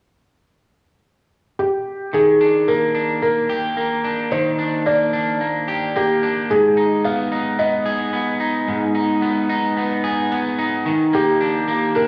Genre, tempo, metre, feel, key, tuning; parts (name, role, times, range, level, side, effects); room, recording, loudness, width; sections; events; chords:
dream pop; 110 BPM; 4/4; straight; Eb major; A4 = 441 Hz
felt-muted upright piano; melody; 1.6-12.1 s; G4 to F5; -22 LUFS; equal; tape echo
electric guitar at the edge of break-up; arpeggios; 2.1-12.1 s; Ab2 to Ab4; -22 LUFS; equal; subtle chorus, tape echo
moderate lush hall reverb, RT60 2.6 s; worn, warbling old tape, cassette tape, warbly pitch drift, studio reverb; -19 LUFS; mono
0.0-2.1 A section; 2.1-10.9 B section; 10.9-12.1 C section
0.0 N.C.; 2.1 Ebmaj7; 6.5 Abm; 10.9 Ebmaj7